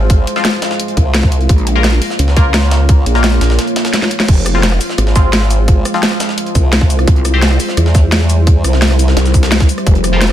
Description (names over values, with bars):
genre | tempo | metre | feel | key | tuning
dark technical drum and bass | 172 BPM | 4/4 | straight | F harmonic minor | A4 = 440 Hz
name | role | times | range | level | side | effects
deep dark ambient pad | sustained chords | 0.0-10.3 s | G3 to Db5 | -20 LUFS | equal | chorus, built-in reverb, sidechain pumping
band-passed chord stab | stabs | 0.0-7.4, 10.1-10.2 s | F3 to C5 | -21 LUFS | left 3 dB | phaser, dub echo
formant-sweep wobble bass | bass | 0.0-9.2 s | Ab1 to E2 | -12 LUFS | equal | chorus
drum and bass drum kit | drums | 0.1-10.3 s | cabasa, crash cymbal, hi-hat, rim click, snare drum | -17 LUFS | left 1 dB | overdrive, small room ambience
electronic kick drum | drums | 0.1-9.9 s | none | -10 LUFS | equal | overdrive, small room ambience
jungle sampler-style drum kit | drums | 0.1-10.3 s | hi-hat, snare drum | -23 LUFS | right 1 dB | high-pass filter on hats, small room ambience, high-pass filter on snare, high-pass filter on room
growl bass | bass | 1.5-2.0, 4.3-4.8, 7.1-10.3 s | F1 to C2 | -13 LUFS | equal | chorus, tube saturation, sidechain pumping
room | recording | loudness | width
digital ambience | dense, heavily limited modern master | -10 LUFS | side -12 dB against mid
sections
0.0-10.3 A section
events
break 3.6-4.3; drum fill 3.9-4.3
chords
0.0 Fm; 1.5 Bbm; 4.3 Fm; 7.1 C